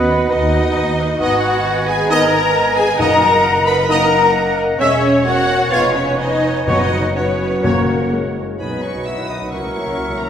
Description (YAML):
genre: classical, dramatic, fast romantic movement for symphony orchestra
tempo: 123-135 BPM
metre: 4/4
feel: rubato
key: B major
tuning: A4 = 441 Hz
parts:
  - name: rich symphonic violin section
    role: melody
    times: 0.0-10.3 s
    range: B4 to E6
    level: -25 LUFS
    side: left 4 dB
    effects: none
  - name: clear clarinet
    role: second line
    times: 0.0-10.3 s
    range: C#5 to G#5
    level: -27 LUFS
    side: equal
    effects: none
  - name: mellow flute section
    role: second line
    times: 0.0-10.3 s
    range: A#4 to B5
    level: -22 LUFS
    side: left 4 dB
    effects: none
  - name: warm oboe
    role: second line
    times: 0.0-10.3 s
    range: D#5 to G#5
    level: -27 LUFS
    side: right 2 dB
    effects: none
  - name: warm symphonic violin section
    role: second line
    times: 0.0-10.3 s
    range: D#4 to B5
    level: -26 LUFS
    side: left 2 dB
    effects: none
  - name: warm bassoon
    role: accompaniment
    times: 0.0-10.3 s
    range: F#3 to B3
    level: -24 LUFS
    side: equal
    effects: none
  - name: dark French horn section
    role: sustained chords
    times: 0.0-10.3 s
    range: F#3 to F#4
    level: -23 LUFS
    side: left 2 dB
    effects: none
  - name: bright trumpet section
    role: stabs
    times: 0.0-10.3 s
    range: A#4 to E5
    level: -23 LUFS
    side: right 1 dB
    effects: none
  - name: rich symphonic cello section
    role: bass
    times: 0.0-10.3 s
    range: A#3 to B4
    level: -20 LUFS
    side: right 1 dB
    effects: none
  - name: warm symphonic double bass section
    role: bass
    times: 0.0-10.2 s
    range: E1 to D#2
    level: -24 LUFS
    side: right 2 dB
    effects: none
  - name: dark symphonic viola section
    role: accompaniment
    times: 0.1-10.3 s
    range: C#3 to D#5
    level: -25 LUFS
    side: right 1 dB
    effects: none
  - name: timpani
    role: percussion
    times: 3.0-3.6, 6.7-8.3 s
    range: F#2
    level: -23 LUFS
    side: equal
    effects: none
room: wet recital hall reverb, RT60 1.7 s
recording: recorded in a church or concert hall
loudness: -13 LUFS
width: side -8 dB against mid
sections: 0.0-8.6 A section; 8.6-10.3 B section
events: none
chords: 0.0 B/D#; 1.2 G#m7; 3.0 D#m/F#; 4.8 C#m/E; 5.7 C#7/E#; 6.7 F#sus4; 7.6 F#; 8.6 B; 9.5 F#7/C#